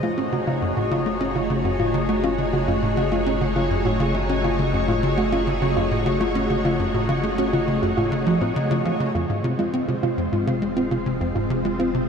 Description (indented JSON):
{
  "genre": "ambient, sequencer-driven space music",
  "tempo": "102 BPM",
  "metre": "4/4",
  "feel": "straight",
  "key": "unclear",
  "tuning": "A4 = 435 Hz",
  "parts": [
    { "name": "string machine, full ensemble", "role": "sustained chords", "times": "0.0-12.1 s", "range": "Ab3 to Db5", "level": "-25 LUFS", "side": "equal", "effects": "ensemble chorus" },
    { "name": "soft round pluck", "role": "arpeggios", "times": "0.0-11.9 s", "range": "F3 to F5", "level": "-26 LUFS", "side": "moving between left 3 dB and right 4 dB", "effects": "chorus, auto-pan, vintage 12-bit sampler grit, ping-pong delay" },
    { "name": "tight sequencer bass", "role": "riff", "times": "0.0-12.0 s", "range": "F2 to Db4", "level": "-24 LUFS", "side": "equal", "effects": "wide subtle chorus, ping-pong delay" },
    { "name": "round analog bass", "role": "bass", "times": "0.0-12.1 s", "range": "F1 to Gb1", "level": "-31 LUFS", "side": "equal", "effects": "none" },
    { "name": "bubbling stepped-filter texture", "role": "texture", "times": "0.0-12.1 s", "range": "Eb4 to Eb5", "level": "-31 LUFS", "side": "left 2 dB", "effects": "chorus, built-in reverb" }
  ],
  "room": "wet huge ambient reverb, RT60 8.0 s",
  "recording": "in a vast, echoing space",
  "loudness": "-20 LUFS",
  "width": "side -6 dB against mid",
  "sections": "0.0-9.1 A section; 9.1-12.1 B section",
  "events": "none",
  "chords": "0.0 Gbmadd9; 9.1 Fm",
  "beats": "0.32 0.91 1.50 | 2.09 2.68 3.27 3.85 | 4.44 5.03 5.62 6.21 | 6.79 7.38 7.97 8.56 | 9.15 9.73 10.32 10.91 | 11.50"
}